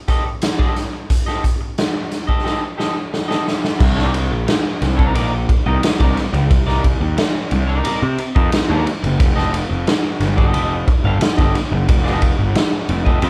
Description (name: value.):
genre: funk.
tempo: 89 BPM.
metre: 4/4.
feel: straight.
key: C dorian.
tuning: A4 = 440 Hz.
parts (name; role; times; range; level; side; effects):
electric guitar at the edge of break-up; accompaniment; 0.1-13.3 s; Eb4 to F5; -27 LUFS; equal; none.
raw garage drum kit; drums; 0.1-13.3 s; crash cymbal, hi-hat, kick drum, ride cymbal, snare drum; -20 LUFS; equal; none.
fuzz picked electric bass; bass; 3.8-13.3 s; F1 to C3; -21 LUFS; equal; overdrive.
room: moderate large studio reverb, RT60 0.9 s.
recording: band playing live in one room.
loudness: -18 LUFS.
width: mono.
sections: 0.0-3.8 A section; 3.8-13.3 B section.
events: drum fill 2.5-3.8.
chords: 0.0 Gsus2; 3.8 Cm9; 9.2 F9.